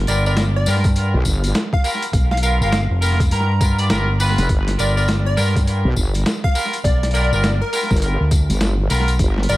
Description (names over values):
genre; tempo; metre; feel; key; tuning
glitch hop; 102 BPM; 4/4; swing 62% on 16ths; unclear; A4 = 441 Hz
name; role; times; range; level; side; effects
wobble bass; bass; 0.0-9.5 s; F1 to B1; -18 LUFS; equal; chorus
plucky unison lead; melody; 0.1-9.6 s; A#4 to A#5; -26 LUFS; equal; tape echo
bright horn section; stabs; 0.1-9.6 s; B3 to D5; -24 LUFS; equal; sidechain pumping, tape echo
overdriven fingered electric bass; bass; 0.1-9.6 s; F1 to G2; -18 LUFS; equal; none
boom bap sampler-style drum kit; drums; 0.1-9.6 s; hi-hat, snare drum; -25 LUFS; equal; overdrive, tape echo
tambourine; percussion; 0.1-9.6 s; none; -30 LUFS; left 4 dB; none
electronic kick drum; drums; 0.8-9.3 s; none; -17 LUFS; equal; overdrive
room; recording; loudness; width
light reverb, digital ambience; echo-heavy mix, vinyl crackle; -15 LUFS; side -17 dB against mid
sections
0.0-9.6 A section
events
none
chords
0.0 G7#9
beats
0.38 0.96 1.55 | 2.14 2.73 3.32 3.90 | 4.49 5.08 5.67 6.26 | 6.84 7.43 8.02 8.61 | 9.20